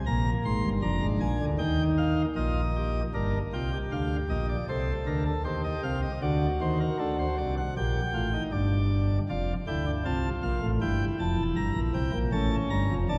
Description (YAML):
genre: classical, baroque-style 3-part fugue for pipe organ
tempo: 78 BPM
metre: 4/4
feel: straight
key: Eb major, G minor from 3.1 s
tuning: A4 = 443 Hz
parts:
  - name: chamber organ, principal chorus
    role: solo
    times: 0.0-13.2 s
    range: E1 to C6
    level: -28 LUFS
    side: equal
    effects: none
room: wet church reverb, RT60 3.4 s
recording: dark, warm production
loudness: -28 LUFS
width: mono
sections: 0.0-3.1 A section; 3.1-13.2 B section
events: none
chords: 0.0 Fm; 1.6 Eb; 3.1 Gm; 4.7 Am7b5/C; 6.2 D; 7.8 Gm; 9.3 Dm/F; 10.8 Edim; 12.3 A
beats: | 0.07 0.83 1.60 2.37 | 3.14 3.92 4.69 5.46 | 6.23 7.00 7.77 8.54 | 9.30 10.06 10.81 11.56 | 12.32 13.08